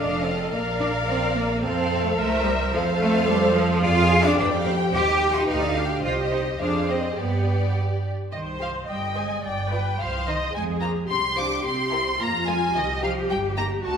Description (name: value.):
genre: quick classical-period movement for string orchestra.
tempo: 109 BPM.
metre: 2/4.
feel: straight.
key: C minor from 3.8 s.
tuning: A4 = 440 Hz.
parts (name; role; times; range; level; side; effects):
rich symphonic violin section; melody; 0.0-14.0 s; D5 to D6; -28 LUFS; left 2 dB; none.
warm studio violin section; second line; 0.0-13.6 s; Eb4 to D6; -30 LUFS; equal; none.
rich studio viola section; accompaniment; 0.0-14.0 s; F4 to Eb5; -28 LUFS; left 1 dB; none.
clear studio cello section; bass; 0.0-14.0 s; Eb3 to G4; -26 LUFS; right 1 dB; none.
clear studio double bass section; bass; 0.0-14.0 s; F1 to G2; -27 LUFS; right 2 dB; none.
room: wet scoring stage reverb, RT60 1.7 s.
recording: minimal, uncompressed stereo recording.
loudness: -21 LUFS.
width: side -7 dB against mid.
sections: 0.0-8.3 A section; 8.3-14.0 B section.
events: none.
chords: 0.0 F7; 0.5 Bb; 1.6 F; 2.2 C7; 2.7 F; 3.8 Ddim/F; 4.4 G7/F; 4.9 Cm/Eb; 5.5 G7/D; 6.0 Cm; 6.6 Fm; 7.2 G; 8.3 Cm; 9.4 G; 10.0 Cm; 10.5 Fm; 11.7 C5; 12.2 Fm; 12.8 Cm.